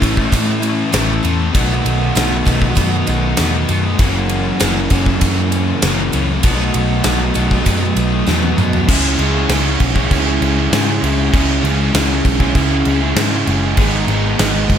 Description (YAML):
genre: rock, shoegaze and dream pop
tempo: 98 BPM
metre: 4/4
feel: straight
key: unclear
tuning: A4 = 439 Hz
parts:
  - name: distorted electric guitar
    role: riff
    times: 0.0-14.8 s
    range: F#2 to C#4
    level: -22 LUFS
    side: equal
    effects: distortion
  - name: overdriven semi-hollow guitar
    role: riff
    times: 0.0-14.8 s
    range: F#2 to E4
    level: -21 LUFS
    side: left 9 dB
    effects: lush chorus
  - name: overdriven semi-hollow guitar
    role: riff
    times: 0.0-14.8 s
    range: F#2 to G#4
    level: -20 LUFS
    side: right 8 dB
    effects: reverse reverb
  - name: vintage muted picked electric bass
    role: bass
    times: 0.0-14.8 s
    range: F#1 to A2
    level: -19 LUFS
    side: equal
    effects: none
  - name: gated 80s drum kit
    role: drums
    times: 0.0-14.8 s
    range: crash cymbal, kick drum, ride cymbal, snare drum, toms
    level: -18 LUFS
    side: equal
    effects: none
  - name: tambourine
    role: percussion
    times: 0.0-8.7 s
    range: none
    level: -32 LUFS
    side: right 12 dB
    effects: none
room: light reverb, small room reverb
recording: none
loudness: -13 LUFS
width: side -9 dB against mid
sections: 0.0-8.9 A section; 8.9-14.8 B section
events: drum fill 8.3-8.9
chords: 0.0 A; 1.5 B7; 4.0 F#7; 6.4 B7; 8.9 C#m; 13.8 G#m